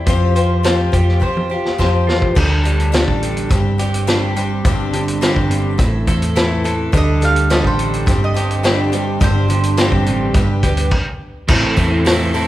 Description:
folk rock and heartland rock; 105 BPM; 4/4; straight; A4 = 441 Hz
picked twelve-string acoustic guitar; accompaniment; 0.0-12.5 s; G2 to C5; -22 LUFS; left 4 dB
electric guitar at the edge of break-up; riff; 0.0-12.5 s; G2 to C5; -20 LUFS; right 3 dB
hollow-body short-scale fingered electric bass; bass; 0.0-12.5 s; G1 to G2; -19 LUFS; equal
vintage drum kit; drums; 0.1-12.5 s; crash cymbal, hi-hat, kick drum, snare drum, toms; -18 LUFS; equal
mellow tonewheel organ; sustained chords; 2.0-12.5 s; D3 to C5; -30 LUFS; equal
bowl-back mandolin; second line; 7.0-10.3 s; C5 to F5; -23 LUFS; right 3 dB
tambourine; percussion; 11.5-12.5 s; -37 LUFS; right 7 dB
moderate recital hall reverb, RT60 1.9 s; recorded in a church or concert hall; -13 LUFS; side -14 dB against mid
0.0-2.4 A section; 2.4-11.5 B section
drum fill 1.2-2.4; stop 10.9-11.5
0.1 Fsus2; 2.4 Dsus4; 3.5 Gsus4; 5.8 Am; 6.9 Dsus4; 8.1 Gsus4; 9.2 Csus2/G; 10.4 G; 11.5 Am

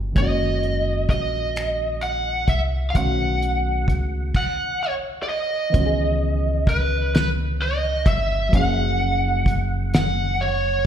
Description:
slow six-eight R&B; 43 BPM (dotted quarters); 6/8; straight; A4 = 438 Hz
overdriven reed electric piano; accompaniment; 0.0-10.9 s; D#3 to G#4; -28 LUFS; right 1 dB
deep dub fingered electric bass; bass; 0.0-10.8 s; F#1 to C#2; -24 LUFS; equal
lead guitar through a small cranked amp; melody; 0.2-10.9 s; B4 to F#5; -23 LUFS; right 1 dB; overdrive
cloth-damped thuddy drum kit; drums; 0.2-10.2 s; crash cymbal, finger snaps, hi-hat, kick drum, snare drum; -21 LUFS; equal
moderate concert hall reverb, RT60 2.2 s; recorded in a church or concert hall; -19 LUFS; side -9 dB against mid
0.0-5.7 A section; 5.7-10.9 B section
stop 4.3-5.7
0.2 F#6; 2.9 B9; 5.7 C#m9; 8.5 F#maj7

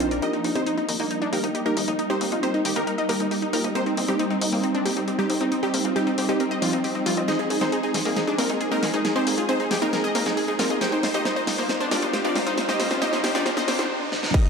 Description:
uplifting trance; 136 BPM; 4/4; straight; Eb major; A4 = 440 Hz
wide unison pluck; melody; 0.0-14.5 s; F3 to G5; -26 LUFS; right 1 dB; sidechain pumping, ping-pong delay
supersaw stab; second line; 0.0-14.5 s; C4 to G5; -31 LUFS; equal; sidechain pumping, dub echo
shimmering ambient pad; sustained chords; 0.0-14.5 s; F3 to F4; -29 LUFS; right 2 dB; chorus, built-in reverb, sidechain pumping
analog pluck; arpeggios; 0.0-14.5 s; Bb3 to Eb5; -29 LUFS; left 3 dB; chorus, sidechain pumping, dub echo
plucky analog bass; bass; 0.0-13.9 s; F1 to Eb2; -35 LUFS; equal
big-room dance drum kit; drums; 0.0-14.5 s; crash cymbal, hi-hat, snare drum; -29 LUFS; equal
swell and riser; sound effects; 0.0-0.2, 8.7-14.3 s; -33 LUFS; right 1 dB
electronic kick drum; drums; 14.3-14.4 s; -17 LUFS; equal
wet scoring stage reverb, RT60 1.9 s, digital ambience; dark, warm production, high-pass filter; -21 LUFS; side -5 dB against mid
0.2-14.3 A section
swell 0.0; build-up 0.2-14.3; drum fill 7.3-13.9, 14.1
0.2 Eb; 3.8 Cm; 7.3 Ab; 10.8 Fsus2

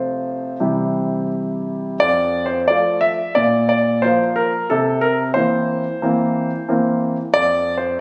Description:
classical-period piano sonatina; 89 BPM; 4/4; rubato; F major; A4 = 440 Hz
clear grand piano; solo; 0.0-8.0 s; F2 to E5; -19 LUFS; equal
wet recital hall reverb, RT60 1.4 s; recorded on a phone in the room, studio reverb, compression; -19 LUFS; mono
0.0-2.0 A section; 2.0-8.0 B section
0.0 F/C; 0.6 C; 2.0 F; 3.4 Bb5; 4.7 C7; 7.3 F5

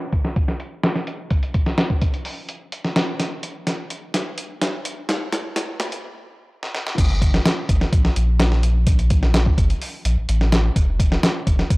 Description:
breakbeat, breaks; 127 BPM; 4/4; straight; G minor; A4 = 440 Hz
dusty soul sampler-style drum kit; drums; 0.1-11.8 s; crash cymbal, hi-hat, kick drum, snare drum; -20 LUFS; equal; low-pass filter on snare, low-pass filter on hats, low-pass filter on kick, low-pass filter on cymbals, low-pass filter on room
saturated sub bass; bass; 7.0-11.8 s; F1 to Bb1; -19 LUFS; equal; transformer saturation
light reverb; dry, gritty hardware recording, transformer saturation, high-pass filter; -18 LUFS; side -23 dB against mid
0.0-7.0 A section; 7.0-11.8 B section
build-up 0.0-7.0; filter sweep on drum 0.0-7.0; filter sweep 0.0-7.0; drum fill 3.2-6.0, 6.6-7.0; stop 6.0-7.0; drop 7.0-11.8

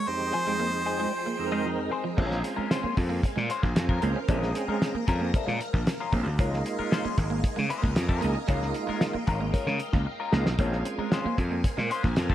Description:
funk; 114 BPM; 4/4; straight; Bb dorian; A4 = 440 Hz
clear harmonica; melody; 0.0-1.7 s; C5; -30 LUFS; right 1 dB
phased string machine; sustained chords; 0.0-12.3 s; F3 to Bb5; -37 LUFS; equal; ensemble chorus, phaser
electric guitar at the edge of break-up; riff; 0.0-12.2 s; F3 to Db4; -34 LUFS; right 4 dB; wide subtle chorus
percussive tonewheel organ; stabs; 0.1-11.3 s; F2 to Bb4; -34 LUFS; right 3 dB; overdrive, chorus vibrato, slow rotary speaker, analog delay
clean electric guitar; accompaniment; 0.3-12.3 s; Ab3 to Eb5; -34 LUFS; left 6 dB; wah, spring reverb
gritty slap bass; bass; 2.2-12.3 s; Ab1 to Db3; -29 LUFS; equal; overdrive
cloth-damped thuddy drum kit; drums; 2.2-12.3 s; crash cymbal, hi-hat, kick drum, snare drum; -27 LUFS; equal
light reverb, small room ambience; -25 LUFS; side -12 dB against mid
0.0-2.2 A section; 2.2-12.3 B section
break 0.1-2.2; drum fill 10.1-10.6
0.1 Fm7; 2.2 Bbm7; 6.4 Db6; 10.6 Bbm7

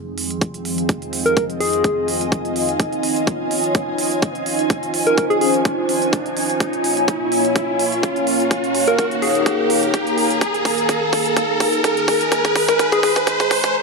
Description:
bass house; 126 BPM; 4/4; swing 54% on 16ths; A4 = 440 Hz
dark analog pad; sustained chords; 0.0-13.8 s; Eb3 to Db5; -23 LUFS; right 1 dB; chorus, phaser, sidechain pumping
riser; sound effects; 0.6-13.7 s; -23 LUFS; right 1 dB
ethereal airy pad; texture; 0.1-13.7 s; C4 to Bb5; -22 LUFS; equal; ensemble chorus, built-in reverb, phaser, sidechain pumping
electronic hi-hat; drums; 0.2-13.7 s; -26 LUFS; right 5 dB
electronic kick drum; drums; 0.4-13.7 s; -20 LUFS; equal; high-pass filter on kick
soft struck synth lead; melody; 1.3-2.1, 5.1-5.5, 8.9-9.7, 12.7-13.1 s; Ab4 to Bb4; -20 LUFS; left 2 dB; chorus, dub echo
moderate plate reverb, RT60 1.2 s; high-pass filter; -16 LUFS; side -3 dB against mid
0.0-13.8 A section
build-up 0.0-13.8; riser 0.6-13.7; drum fill 6.6-13.7
0.0 Fm7; 2.8 Dbadd9; 6.6 Bbm; 10.4 Ebsus4

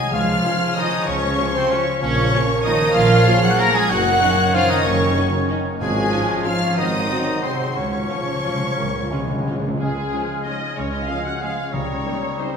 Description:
classical, orchestral ballroom waltz; 166-205 BPM; 3/4; rubato; Db major; A4 = 440 Hz
rich symphonic violin section; melody; 0.0-12.5 s; Eb4 to Bb6; -26 LUFS; left 3 dB
clear clarinet; second line; 0.0-12.6 s; Ab4 to Bb5; -28 LUFS; equal
mellow hollow silver concert flute; second line; 0.0-12.6 s; Ab4 to F6; -28 LUFS; left 1 dB
warm oboe; second line; 0.0-12.6 s; C5 to Bb5; -32 LUFS; right 1 dB
warm studio violin section; second line; 0.0-12.6 s; Ab4 to Bb5; -28 LUFS; left 2 dB
warm bassoon; accompaniment; 0.0-12.6 s; Eb3 to Bb3; -30 LUFS; right 1 dB
mellow French horn section; sustained chords; 0.0-12.6 s; Ab3 to C5; -27 LUFS; equal
concert harp; arpeggios; 0.0-12.6 s; Gb2 to Ab5; -30 LUFS; left 5 dB
warm trumpet; stabs; 0.0-12.5 s; Ab3 to Bb4; -26 LUFS; equal
warm symphonic cello section; bass; 0.0-12.0 s; Ab2 to Bb3; -26 LUFS; right 2 dB
mellow tuba; bass; 0.1-12.0 s; Gb1 to Db2; -30 LUFS; right 2 dB
rich symphonic double bass section; bass; 0.1-12.0 s; Gb1 to Db2; -26 LUFS; right 1 dB
timpani; percussion; 0.1-0.6, 5.8-12.2 s; Ab2 to Db3; -29 LUFS; equal
warm symphonic viola section; accompaniment; 0.4-12.5 s; G3 to Gb4; -33 LUFS; right 1 dB
dark trombone section; sustained chords; 0.4-12.5 s; Eb3 to Eb4; -34 LUFS; right 1 dB
wet recital hall reverb, RT60 1.5 s; recorded in a church or concert hall; -17 LUFS; side -6 dB against mid
0.0-9.8 A section; 9.8-12.6 A section
timpani fill 7.8-9.8
0.1 Db; 2.0 Bbm; 3.9 Ebm7/Gb; 5.8 Db/Ab; 6.8 Ab7; 7.8 Db; 11.7 Eb7/Db

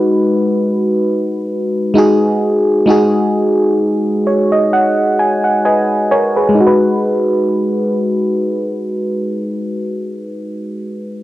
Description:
R&B; 65 BPM; 4/4; swing 54% on 16ths; G# minor; A4 = 441 Hz
FM electric piano; solo; 0.0-11.2 s; G#3 to G#5; -12 LUFS; equal; chorus, low-pass filter, cassette tape
wet small room reverb, RT60 0.6 s; home recording on cassette; -12 LUFS; side -15 dB against mid
0.0-6.6 A section; 6.6-10.3 B section
filter sweep on FM electric piano 0.0-6.6; FM electric piano fill 3.8-6.6
0.0 G#m7

